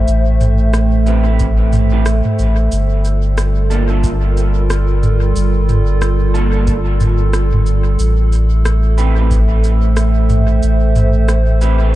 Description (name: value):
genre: ambient dub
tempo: 91 BPM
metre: 4/4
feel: swing 59% on 16ths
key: unclear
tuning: A4 = 439 Hz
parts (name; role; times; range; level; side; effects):
- warbly tape-like pad; sustained chords; 0.0-12.0 s; G3 to G5; -20 LUFS; right 3 dB; chorus, built-in reverb
- warm sub bass; bass; 0.0-11.9 s; G1 to A1; -13 LUFS; equal; tube saturation
- organic electronic drum kit; drums; 0.1-11.8 s; cabasa, rim click, toms; -22 LUFS; equal; dub echo
- electric guitar through a small old amp; stabs; 1.1-12.0 s; Bb3 to B4; -25 LUFS; right 3 dB; analog chorus, dub echo
- electronic kick drum; drums; 1.4-9.5 s; none; -20 LUFS; equal; none
room: little or no reverb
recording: dark, warm production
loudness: -11 LUFS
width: side -15 dB against mid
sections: 0.0-12.0 A section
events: none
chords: 0.0 Am7; 2.7 Gm7; 8.0 Am7